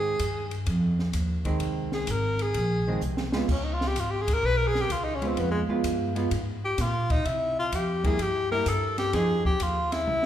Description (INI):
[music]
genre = jazz, small-group swing and bop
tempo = 128 BPM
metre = 4/4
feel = swing 68% on 8ths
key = F minor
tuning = A4 = 438 Hz
[part]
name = breathy tenor saxophone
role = melody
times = 0.0-10.3 s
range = Ab3 to Cb5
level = -27 LUFS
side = left 1 dB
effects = none
[part]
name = hollow-body jazz guitar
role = accompaniment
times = 0.0-9.4 s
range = Eb3 to Ab4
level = -31 LUFS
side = right 3 dB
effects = none
[part]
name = upright bass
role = bass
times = 0.0-10.3 s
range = Ab1 to C3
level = -29 LUFS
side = equal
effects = none
[part]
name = open jazz drum kit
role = drums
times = 0.2-10.3 s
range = crash cymbal, hi-hat, kick drum, ride cymbal, snare drum, toms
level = -32 LUFS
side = equal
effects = none
[sound]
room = wet recital hall reverb, RT60 1.4 s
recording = recorded in a church or concert hall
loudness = -24 LUFS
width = side -11 dB against mid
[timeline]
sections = 0.0-10.3 A section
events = tenor saxophone solo 0.0-10.3; drum fill 3.0-3.5, 10.1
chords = 0.0 Fm7; 3.5 Db7; 7.2 C7; 9.1 Fm7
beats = 0.19 0.66 1.13 | 1.60 2.07 2.54 3.02 | 3.48 3.96 4.43 4.90 | 5.37 5.84 6.31 6.78 | 7.25 7.72 8.19 8.66 | 9.13 9.60 10.07